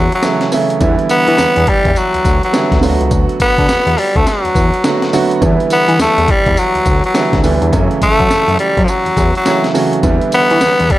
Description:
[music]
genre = R&B, new jack swing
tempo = 104 BPM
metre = 4/4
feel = swing 63% on 16ths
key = E dorian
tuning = A4 = 439 Hz
[part]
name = raspy tenor saxophone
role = melody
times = 0.0-11.0 s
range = F3 to B3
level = -13 LUFS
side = left 1 dB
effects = none
[part]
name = clear baby grand piano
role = accompaniment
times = 0.0-11.0 s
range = C#3 to F#4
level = -17 LUFS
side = right 3 dB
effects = none
[part]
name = fat analog bass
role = bass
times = 0.0-10.9 s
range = C#2 to F#3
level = -16 LUFS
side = equal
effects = none
[part]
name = breakbeat sampler-style drum kit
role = drums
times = 0.1-11.0 s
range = hi-hat, kick drum, snare drum, tambourine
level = -17 LUFS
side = equal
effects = none
[sound]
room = light reverb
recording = none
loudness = -10 LUFS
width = side -15 dB against mid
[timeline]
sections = 0.0-11.0 A section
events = none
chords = 0.0 F#m7; 0.8 Em7; 2.8 D6; 5.4 Em7; 7.7 F#m7; 10.0 Em7

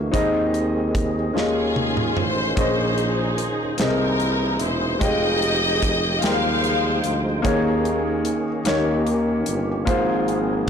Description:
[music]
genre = slow gospel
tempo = 49 BPM (dotted quarters)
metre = 6/8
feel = straight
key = unclear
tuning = A4 = 441 Hz
[part]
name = warm grand piano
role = accompaniment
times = 0.0-10.7 s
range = Ab2 to G5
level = -23 LUFS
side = left 1 dB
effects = none
[part]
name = percussive tonewheel organ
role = sustained chords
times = 0.0-10.7 s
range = Eb3 to G5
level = -29 LUFS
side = right 2 dB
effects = slow rotary speaker, overdrive, chorus vibrato
[part]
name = mellow tuba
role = bass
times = 0.0-10.7 s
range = E1 to Eb2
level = -25 LUFS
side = right 1 dB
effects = none
[part]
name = modern studio drum kit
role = drums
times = 0.1-10.7 s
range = hi-hat, kick drum, snare drum, toms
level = -26 LUFS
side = right 1 dB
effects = soft clipping on kick
[part]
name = warm studio string section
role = melody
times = 1.4-7.4 s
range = Db4 to F5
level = -23 LUFS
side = left 1 dB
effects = none
[sound]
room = light reverb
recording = blown-out, overdriven recording, overdrive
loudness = -19 LUFS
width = side -7 dB against mid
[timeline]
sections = 0.0-10.7 A section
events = drum fill 1.4-2.6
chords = 0.1 Ab/Eb; 1.4 Eb9sus4; 2.6 Bbm11; 3.8 C7alt; 5.0 Fm9; 7.4 Eb7sus4; 8.7 Eb7; 9.9 Ab69

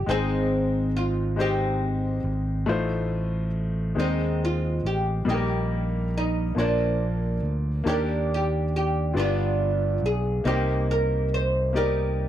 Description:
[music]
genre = slow gospel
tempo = 46 BPM (dotted quarters)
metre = 6/8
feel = straight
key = Eb major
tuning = A4 = 439 Hz
[part]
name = oud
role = melody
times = 0.0-12.3 s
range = F3 to C5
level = -26 LUFS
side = right 1 dB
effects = none
[part]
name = clear baby grand piano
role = accompaniment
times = 0.0-12.3 s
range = G2 to G5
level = -30 LUFS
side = left 4 dB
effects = none
[part]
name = fingered electric bass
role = bass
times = 0.0-12.3 s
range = G1 to Eb2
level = -26 LUFS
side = equal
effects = none
[sound]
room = little or no reverb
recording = dry, close 1970s-style studio recording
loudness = -22 LUFS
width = side -11 dB against mid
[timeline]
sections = 0.0-12.3 A section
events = none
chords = 0.1 Abmaj7; 2.7 F7/A; 4.0 Ab/Eb; 5.3 Eb/Bb; 6.6 Bb; 7.9 Ebmaj7; 9.2 G7; 10.5 Cm7

